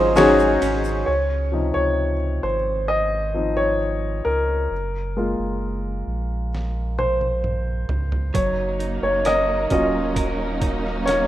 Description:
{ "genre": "pop ballad", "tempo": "66 BPM", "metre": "4/4", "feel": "straight", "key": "Db major", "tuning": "A4 = 440 Hz", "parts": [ { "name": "mellow French horn section", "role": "second line", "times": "0.0-1.0 s", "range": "Db4 to F4", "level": "-30 LUFS", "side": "right 3 dB", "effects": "none" }, { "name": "warm baby grand piano", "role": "accompaniment", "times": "0.0-11.3 s", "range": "C3 to Eb5", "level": "-21 LUFS", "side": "left 1 dB", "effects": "none" }, { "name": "warm studio string section", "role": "sustained chords", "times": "0.0-1.0, 8.3-11.3 s", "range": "Db3 to Eb4", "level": "-29 LUFS", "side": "right 2 dB", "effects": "none" }, { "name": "direct-recorded clean electric guitar", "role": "arpeggios", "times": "0.0-1.7, 8.3-11.3 s", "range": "Ab2 to Bb4", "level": "-30 LUFS", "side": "right 6 dB", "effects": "wide subtle chorus, ping-pong delay" }, { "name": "warm sub bass", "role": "bass", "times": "0.0-11.3 s", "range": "Eb1 to Db2", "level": "-26 LUFS", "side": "equal", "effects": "none" }, { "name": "trip hop sampler-style drum kit", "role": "drums", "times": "0.2-0.8, 6.5-11.3 s", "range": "hi-hat, kick drum, ride cymbal, rim click, snare drum, toms", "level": "-28 LUFS", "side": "right 1 dB", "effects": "none" }, { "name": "tube shaker", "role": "percussion", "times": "0.2-1.1 s", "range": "none", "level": "-45 LUFS", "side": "right 11 dB", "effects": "none" } ], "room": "light reverb, studio ambience", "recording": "rough home demo mix", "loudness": "-19 LUFS", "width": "side -13 dB against mid", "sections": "0.0-1.1 A section; 1.1-11.3 B section", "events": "grand piano solo 1.1-11.3; drum fill 6.5-8.4", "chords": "0.0 Ab7sus4; 1.1 Dbmaj7; 4.7 Gbmaj7; 8.4 Ebm7", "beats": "0.17 | 1.08 1.99 2.90 3.81 | 4.71 5.62 6.53 7.44 | 8.35 9.26 10.17 11.08" }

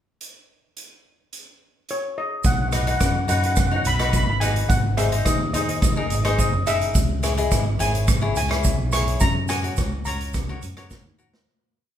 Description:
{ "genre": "calypso", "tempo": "106 BPM", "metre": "4/4", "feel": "straight", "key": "B major", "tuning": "A4 = 440 Hz", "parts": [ { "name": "street-band drum kit", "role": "drums", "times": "0.2-11.5 s", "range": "hi-hat, kick drum, rim click, snare drum", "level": "-23 LUFS", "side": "equal", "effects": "none" }, { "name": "steel pan", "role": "melody", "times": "1.9-11.1 s", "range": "C#5 to C#6", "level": "-26 LUFS", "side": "left 1 dB", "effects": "none" }, { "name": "fingered electric bass", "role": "bass", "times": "2.4-11.4 s", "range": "F#1 to F#2", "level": "-24 LUFS", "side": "equal", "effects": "none" }, { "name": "tube shaker", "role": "percussion", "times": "2.4-11.3 s", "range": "none", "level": "-33 LUFS", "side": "right 7 dB", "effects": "none" }, { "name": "cavaquinho", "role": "accompaniment", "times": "2.7-11.5 s", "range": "D#4 to D#5", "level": "-28 LUFS", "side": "left 4 dB", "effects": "none" } ], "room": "wet large studio reverb, RT60 1.0 s", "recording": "band playing live in one room", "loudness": "-19 LUFS", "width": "side -10 dB against mid", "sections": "0.2-2.4 pickup bar; 2.4-11.5 verse", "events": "fade-out 9.2-11.5; drum fill 10.9-11.5", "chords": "0.2 N.C.; 2.4 B; 4.7 G#7; 7.0 C#m7; 9.2 F#", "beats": "| 0.20 0.76 1.32 1.89 | 2.45 3.01 3.57 4.13 | 4.70 5.26 5.83 6.39 | 6.95 7.52 8.08 8.65 | 9.21 9.78 10.34 10.90" }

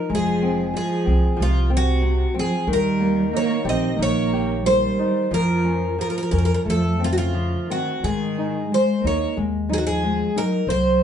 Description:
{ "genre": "fado-style ballad", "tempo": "91 BPM", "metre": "4/4", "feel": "rubato", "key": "unclear", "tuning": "A4 = 440 Hz", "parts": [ { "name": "picked twelve-string acoustic guitar", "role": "melody", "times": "0.0-11.0 s", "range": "F4 to Eb5", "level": "-23 LUFS", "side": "equal", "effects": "none" }, { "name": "dark cello", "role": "second line", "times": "0.0-11.0 s", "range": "C3 to C4", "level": "-24 LUFS", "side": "right 2 dB", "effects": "none" }, { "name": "flamenco guitar", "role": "accompaniment", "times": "0.0-11.0 s", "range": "C3 to C5", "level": "-26 LUFS", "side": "left 3 dB", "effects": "none" }, { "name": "upright bass", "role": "bass", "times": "0.1-11.0 s", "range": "F1 to Ab2", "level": "-24 LUFS", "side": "equal", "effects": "none" } ], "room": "wet studio reverb, RT60 0.6 s", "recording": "heard from further back in the room, nothing above 10.7 kHz", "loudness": "-19 LUFS", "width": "side -9 dB against mid", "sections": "0.0-11.0 A section", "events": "none", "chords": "0.1 Fm; 2.7 Eb; 5.3 Bbm/F; 6.7 F; 8.0 Ab5", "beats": "| 0.10 0.74 1.38 2.02 | 2.67 3.33 3.99 4.65 | 5.32 5.98 6.65 7.34 | 8.02 8.70 9.37 10.03 | 10.68" }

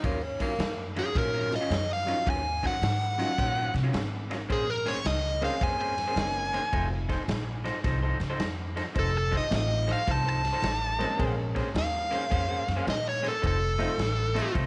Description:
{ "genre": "electric blues shuffle", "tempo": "108 BPM", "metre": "4/4", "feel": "swing 66% on 8ths", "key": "Bb minor", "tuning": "A4 = 440 Hz", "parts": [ { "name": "clear tenor saxophone", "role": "second line", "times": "0.0-0.9, 14.4-14.7 s", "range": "A3 to Db4", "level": "-37 LUFS", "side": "equal", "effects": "none" }, { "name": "electric guitar through a small old amp", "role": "riff", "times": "0.0-14.7 s", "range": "Eb3 to C5", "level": "-37 LUFS", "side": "equal", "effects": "none" }, { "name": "upright bass", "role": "bass", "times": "0.0-14.7 s", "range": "F1 to C3", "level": "-34 LUFS", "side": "equal", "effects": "none" }, { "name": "raw garage drum kit", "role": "drums", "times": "0.0-14.7 s", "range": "kick drum, ride cymbal, snare drum", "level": "-36 LUFS", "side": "equal", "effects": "none" }, { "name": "dark smooth lead guitar", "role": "melody", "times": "1.0-14.5 s", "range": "Ab4 to A5", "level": "-32 LUFS", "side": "equal", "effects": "overdrive, tape echo" }, { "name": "warm upright piano", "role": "accompaniment", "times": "1.5-14.7 s", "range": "Gb3 to Ab4", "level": "-40 LUFS", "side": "equal", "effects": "none" } ], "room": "light reverb, small room ambience", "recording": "nothing above 11.0 kHz", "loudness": "-28 LUFS", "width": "mono", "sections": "0.0-14.7 A section", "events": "none", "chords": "0.0 Ebm9; 4.5 Bbm9; 6.7 F7; 11.2 Bbm9; 13.4 F7", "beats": "| 0.03 0.59 1.14 1.70 | 2.26 2.82 3.38 3.93 | 4.49 5.05 5.61 6.17 | 6.72 7.28 7.84 8.40 | 8.96 9.51 10.07 10.63 | 11.19 11.75 12.31 12.87 | 13.43 13.98 14.54" }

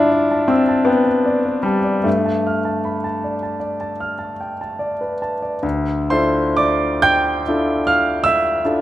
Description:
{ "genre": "classical, impressionist solo piano", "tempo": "42-55 BPM (dotted quarters)", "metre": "9/8", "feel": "rubato", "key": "D minor", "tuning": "A4 = 441 Hz", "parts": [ { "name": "clear concert grand piano", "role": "solo", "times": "0.0-8.8 s", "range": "D2 to G6", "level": "-16 LUFS", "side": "equal", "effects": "none" } ], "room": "moderate recital hall reverb, RT60 1.8 s", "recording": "none", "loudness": "-16 LUFS", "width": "side -14 dB against mid", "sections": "0.0-5.6 A section; 5.6-8.8 B section", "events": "none", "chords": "0.0 G13; 2.1 G9; 5.6 Dmadd9", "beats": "0.89 | 2.06 3.24 4.40 | 5.63 7.02 8.24" }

